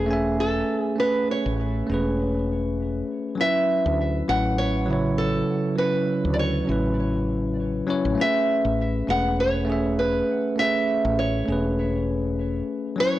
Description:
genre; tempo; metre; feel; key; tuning
sunset chillout; 100 BPM; 4/4; swing 54% on 16ths; A major; A4 = 441 Hz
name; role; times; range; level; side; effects
nylon-string guitar; melody; 0.0-13.2 s; G#4 to F#5; -25 LUFS; right 1 dB; tape echo
bell-like tine electric piano; accompaniment; 0.0-13.2 s; C#3 to G#5; -24 LUFS; moving between left 5 dB and right 3 dB; auto-pan
woody fretless electric bass; bass; 0.0-12.6 s; E1 to D2; -27 LUFS; equal; none
room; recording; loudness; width
light reverb, small room ambience; dry, gritty hardware recording, transformer saturation, cassette tape; -21 LUFS; side -14 dB against mid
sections
0.0-13.2 A section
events
none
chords
0.0 Amaj9; 3.4 Dmaj13; 8.2 Amaj9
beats
0.39 | 0.99 1.59 2.19 2.79 | 3.39 3.99 4.59 5.19 | 5.79 6.39 6.99 7.59 | 8.19 8.79 9.39 9.99 | 10.59 11.19 11.79 12.39 | 12.99

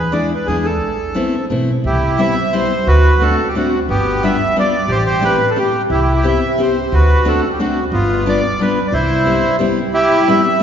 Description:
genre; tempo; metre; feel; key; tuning
musette waltz; 178 BPM; 3/4; swing 55% on 8ths; C major; A4 = 440 Hz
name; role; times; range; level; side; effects
bandoneon; melody; 0.0-10.6 s; B3 to E5; -16 LUFS; right 1 dB; none
upright bass; bass; 0.0-9.4 s; G1 to E2; -18 LUFS; equal; none
picked steel-string acoustic guitar; accompaniment; 0.1-10.6 s; G3 to G4; -19 LUFS; left 2 dB; none
room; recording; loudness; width
wet church reverb, RT60 3.1 s; recorded in a church or concert hall, nothing above 7.5 kHz; -13 LUFS; side -8 dB against mid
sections
0.0-1.8 A section; 1.8-9.9 B section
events
none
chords
0.0 E7; 0.8 Amadd9; 1.8 Cmaj7; 2.9 D7; 3.9 G7; 4.9 Am7; 5.9 Cmaj7; 6.9 D7; 7.9 G7; 8.9 Cmaj7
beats
0.14 0.48 | 0.81 1.15 1.50 | 1.85 2.19 2.53 | 2.87 3.21 3.55 | 3.88 4.22 4.55 | 4.88 5.22 5.56 | 5.90 6.24 6.59 | 6.92 7.26 7.60 | 7.93 8.27 8.60 | 8.93 9.26 9.60 | 9.94 10.27 10.61

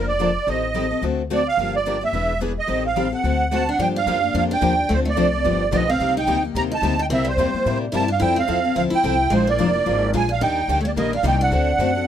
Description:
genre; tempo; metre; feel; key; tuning
acoustic string swing (jazz manouche); 217 BPM; 4/4; swing 57% on 8ths; G minor; A4 = 440 Hz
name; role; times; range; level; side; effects
musette accordion; melody; 0.0-12.1 s; C5 to Bb5; -21 LUFS; right 4 dB; none
picked steel-string acoustic guitar; accompaniment; 0.0-12.1 s; C3 to Bb4; -25 LUFS; left 8 dB; none
picked steel-string acoustic guitar; accompaniment; 0.0-11.9 s; C3 to B4; -29 LUFS; right 3 dB; none
upright bass; bass; 0.0-12.1 s; E1 to A2; -25 LUFS; left 1 dB; none
picked steel-string acoustic guitar; second line; 3.5-12.1 s; G3 to G4; -26 LUFS; equal; none
room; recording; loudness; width
light reverb; faint mains hum; -18 LUFS; side -9 dB against mid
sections
0.0-3.8 A section; 3.8-12.1 B section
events
none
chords
0.5 Am7b5; 1.0 D7; 1.6 Gm7; 2.1 E7; 2.7 Am7b5; 3.2 D7; 3.8 Gm7; 4.9 Dm7; 5.5 G7; 6.0 Cm7; 7.1 C7; 8.2 Fmaj7; 9.3 Bb7; 10.4 Ebmaj7; 11.5 D7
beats
0.19 | 0.47 0.75 1.02 1.30 | 1.58 1.85 2.13 2.41 | 2.69 2.96 3.24 3.52 | 3.79 4.07 4.34 4.62 | 4.90 5.17 5.45 5.73 | 6.00 6.28 6.55 6.83 | 7.11 7.38 7.66 7.93 | 8.21 8.48 8.76 9.04 | 9.31 9.59 9.86 10.14 | 10.41 10.69 10.97 11.24 | 11.52 11.79 12.07

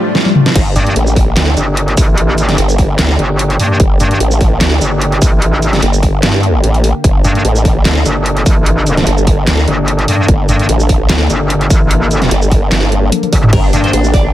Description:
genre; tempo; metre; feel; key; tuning
heavy wobble dubstep; 148 BPM; 4/4; swing 53% on 16ths, half-time; G minor; A4 = 440 Hz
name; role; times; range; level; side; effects
lush unison pad; sustained chords; 0.0-14.3 s; A2 to A4; -19 LUFS; left 2 dB; chorus, sidechain pumping
swell; sound effects; 0.0-0.6 s; none; -18 LUFS; left 2 dB; none
dubstep drum kit; drums; 0.1-14.2 s; crash cymbal, handclaps, hi-hat, ride cymbal, shaker, snare drum, toms; -16 LUFS; equal; overdrive
formant-sweep wobble bass; bass; 0.6-14.3 s; G1 to G2; -12 LUFS; equal; chorus, overdrive
electronic kick drum; drums; 0.6-14.2 s; none; -12 LUFS; equal; overdrive
metallic wobble bass; bass; 0.8-13.9 s; G1 to G2; -12 LUFS; equal; chorus, overdrive
clean electric guitar; melody; 13.5-14.3 s; D4 to D5; -20 LUFS; right 2 dB; digital delay
room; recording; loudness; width
little or no reverb; none; -9 LUFS; side -14 dB against mid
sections
0.6-14.3 A section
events
break 0.0-0.6; swell 0.0-0.6; drum fill 0.1-0.6, 13.1-13.5; drop 0.6-14.3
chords
0.0 Dm; 0.6 Gm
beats
0.15 | 0.56 0.96 1.37 1.77 | 2.18 2.58 2.99 3.39 | 3.80 4.20 4.61 5.01 | 5.42 5.83 6.23 6.64 | 7.04 7.45 7.85 8.26 | 8.66 9.07 9.47 9.88 | 10.29 10.69 11.10 11.50 | 11.91 12.31 12.72 13.12 | 13.53 13.93

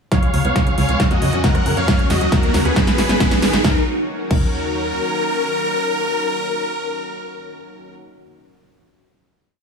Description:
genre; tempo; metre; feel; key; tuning
uplifting trance; 136 BPM; 4/4; straight; Eb minor; A4 = 440 Hz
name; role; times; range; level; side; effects
supersaw chords; melody; 0.1-7.9 s; Gb4 to Gb5; -21 LUFS; left 1 dB; sidechain pumping, low-pass filter, tape echo
lush unison pad; sustained chords; 0.1-7.9 s; Eb3 to Ab4; -27 LUFS; equal; chorus, vintage 12-bit sampler grit, sidechain pumping
liquid acid bass; arpeggios; 0.1-4.4 s; Db3 to Eb4; -24 LUFS; right 1 dB; phaser, analog chorus, sidechain pumping, digital delay
big-room dance drum kit; drums; 0.1-4.4 s; crash cymbal, hi-hat, rim click, snare drum; -22 LUFS; equal; sidechain pumping on hats, sidechain pumping on cymbals
electronic kick drum; drums; 0.1-4.4 s; none; -18 LUFS; equal; none
riser; sound effects; 1.6-3.6 s; none; -26 LUFS; equal; none
tight sequencer bass; bass; 0.2-4.9 s; Ab1 to Gb2; -22 LUFS; equal; sidechain pumping
room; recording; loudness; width
light reverb, digital ambience; none; -16 LUFS; side -5 dB against mid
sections
0.1-3.6 build; 3.6-7.2 final chord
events
build-up 0.1-3.6; drum fill 0.1-3.6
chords
0.1 Db7; 1.0 Gbadd9; 1.9 Ebm7; 2.8 Abm7; 3.6 Ebm7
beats
| 0.12 0.56 1.00 1.44 | 1.88 2.32 2.76 3.21 | 3.65 4.09 4.53 4.97 | 5.41 5.85 6.29 6.73

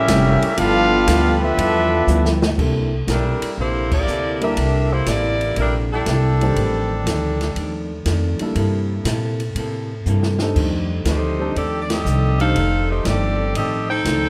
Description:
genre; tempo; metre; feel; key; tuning
jazz, big band swing; 120 BPM; 4/4; swing 68% on 8ths; unclear; A4 = 440 Hz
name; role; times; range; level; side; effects
mellow trumpet section; melody; 0.0-2.4 s; Db4 to F5; -21 LUFS; equal; none
clear trombone section; second line; 0.0-2.4 s; G3 to F4; -23 LUFS; equal; none
muted trombone section; sustained chords; 0.0-2.6 s; C#3 to G4; -31 LUFS; equal; none
upright bass; bass; 0.0-14.3 s; F1 to Bb2; -23 LUFS; equal; none
vintage hollow-body jazz guitar; accompaniment; 0.1-14.3 s; F2 to A4; -28 LUFS; equal; none
open jazz drum kit; drums; 0.1-14.2 s; crash cymbal, hi-hat, kick drum, ride cymbal, snare drum; -28 LUFS; equal; none
warm grand piano; accompaniment; 2.6-12.6 s; Eb3 to Bb4; -28 LUFS; equal; none
clear saxophone section; melody; 3.1-7.9, 11.1-14.3 s; G3 to G5; -24 LUFS; equal; none
room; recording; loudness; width
moderate recital hall reverb, RT60 1.2 s; none; -19 LUFS; mono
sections
0.0-2.6 A section; 2.6-14.3 B section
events
drum fill 2.1-2.6, 10.1-10.6; band accent 3.8, 11.8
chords
0.0 A7b9; 0.6 G13; 2.6 C13; 6.6 F13; 8.6 C13; 10.6 F13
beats
0.09 | 0.58 1.08 1.58 2.08 | 2.58 3.07 3.57 4.07 | 4.57 5.07 5.57 6.07 | 6.57 7.07 7.57 8.06 | 8.56 9.06 9.56 10.06 | 10.56 11.06 11.56 12.06 | 12.55 13.05 13.55 14.05

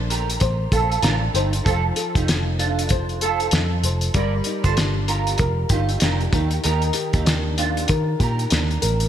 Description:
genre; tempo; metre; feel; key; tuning
indie pop, bedroom pop; 96 BPM; 4/4; swing 60% on 16ths; Bb major; A4 = 440 Hz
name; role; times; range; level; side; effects
flamenco guitar; accompaniment; 0.0-9.1 s; Eb3 to C5; -27 LUFS; left 3 dB; analog chorus, warbly pitch drift
vintage muted picked electric bass; bass; 0.0-9.1 s; F1 to Eb3; -22 LUFS; equal; none
electric guitar through a small old amp; second line; 0.1-8.5 s; D4 to D5; -26 LUFS; right 6 dB; ensemble chorus, digital delay
cloth-damped thuddy drum kit; drums; 0.1-9.1 s; hi-hat, kick drum, snare drum; -22 LUFS; equal; gated reverb
room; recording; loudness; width
light reverb; bright 1980s-style digital production; -18 LUFS; side -10 dB against mid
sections
0.0-9.1 A section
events
none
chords
0.0 Bbmaj9; 1.7 F7; 4.1 Gm7; 6.3 Ebmaj7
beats
0.41 1.03 | 1.65 2.28 2.90 3.53 | 4.15 4.77 5.40 6.02 | 6.64 7.27 7.89 8.52

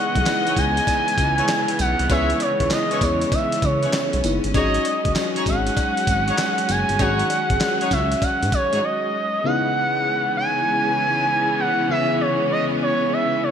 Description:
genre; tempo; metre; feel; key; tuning
R&B, new jack swing; 98 BPM; 4/4; swing 66% on 16ths; C# minor; A4 = 440 Hz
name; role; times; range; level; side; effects
expressive portamento lead; melody; 0.0-13.5 s; C#5 to G#5; -21 LUFS; right 1 dB; chorus
FM electric piano with soft pad layer; accompaniment; 0.0-13.5 s; C#3 to G#4; -27 LUFS; left 4 dB; chorus
warm studio string section; sustained chords; 0.0-13.5 s; C#3 to D#5; -26 LUFS; right 1 dB; none
smooth gliding synth bass; bass; 0.2-8.8 s; F#1 to G#2; -24 LUFS; equal; none
dusty soul sampler-style drum kit; drums; 0.2-8.8 s; handclaps, hi-hat, kick drum, snare drum, tambourine; -25 LUFS; equal; none
cowbell; percussion; 0.3-8.4 s; none; -38 LUFS; left 8 dB; none
warm horn section; stabs; 0.5-8.8 s; D#4 to C#5; -30 LUFS; equal; digital delay
room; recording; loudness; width
moderate lush hall reverb, RT60 2.0 s; bright 1980s-style digital production; -18 LUFS; side -8 dB against mid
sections
0.0-9.4 A section; 9.4-13.5 A section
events
break 8.8-9.4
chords
0.0 C#m7; 4.5 G#7sus4; 9.4 C#m7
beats
0.26 0.87 1.48 | 2.10 2.71 3.32 3.93 | 4.55 5.16 5.77 6.38 | 7.00 7.61 8.22 8.83 | 9.44 10.06 10.67 11.28 | 11.89 12.51 13.12

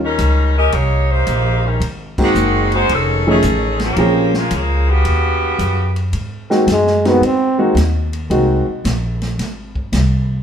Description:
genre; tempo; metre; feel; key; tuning
jazz, big band swing; 111 BPM; 4/4; swing 68% on 8ths; Ab mixolydian; A4 = 440 Hz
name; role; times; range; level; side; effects
clear saxophone section; melody; 0.0-6.0 s; Db3 to Eb5; -17 LUFS; equal; none
upright bass; bass; 0.0-10.4 s; F1 to Ab2; -17 LUFS; equal; none
vintage drum kit; drums; 0.2-10.1 s; crash cymbal, hi-hat, kick drum, ride cymbal, snare drum; -26 LUFS; equal; none
warm upright piano; accompaniment; 2.2-8.6 s; F3 to G#4; -16 LUFS; equal; none
warm trombone; melody; 6.7-7.6 s; Ab3 to C4; -15 LUFS; right 1 dB; none
room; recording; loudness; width
moderate stone room reverb, RT60 1.1 s; band playing live in one room; -13 LUFS; side -8 dB against mid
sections
0.0-6.1 A section; 6.1-10.4 B section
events
band accent 2.1; trombone solo 6.1-10.4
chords
0.0 Eb7; 1.8 Ab7; 2.9 F7alt; 4.0 Bbm7; 5.1 Eb7alt; 6.1 Ab7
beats
0.18 0.73 1.27 | 1.81 2.35 2.89 3.44 | 3.98 4.52 5.06 5.60 | 6.14 6.68 7.22 7.77 | 8.31 8.85 9.39 9.93

